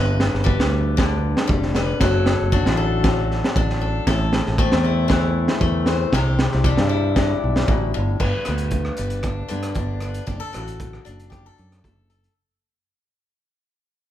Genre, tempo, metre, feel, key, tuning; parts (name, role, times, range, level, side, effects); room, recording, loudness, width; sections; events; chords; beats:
highlife guitar band; 116 BPM; 4/4; straight; G major; A4 = 440 Hz
picked acoustic archtop guitar; accompaniment; 0.0-12.3 s; G2 to C5; -24 LUFS; left 4 dB
fingered electric bass; bass; 0.0-12.3 s; F1 to G2; -22 LUFS; right 1 dB
crunchy breakbeat drum kit; drums; 0.2-12.3 s; crash cymbal, hi-hat, kick drum, rim click, snare drum; -22 LUFS; right 1 dB
moderate large studio reverb, RT60 1.2 s; band playing live in one room; -18 LUFS; side -12 dB against mid
0.0-8.2 A section; 8.2-12.4 B section
fade-out 8.2-12.4
0.0 G; 2.0 D/F#; 4.1 Am; 6.1 Cadd9; 8.2 G; 10.3 D/F#
0.47 0.98 1.50 | 2.02 2.53 3.04 3.56 | 4.08 4.59 5.11 5.62 | 6.13 6.65 7.17 7.68 | 8.20 8.72 9.24 9.75 | 10.27 10.79 11.31 11.83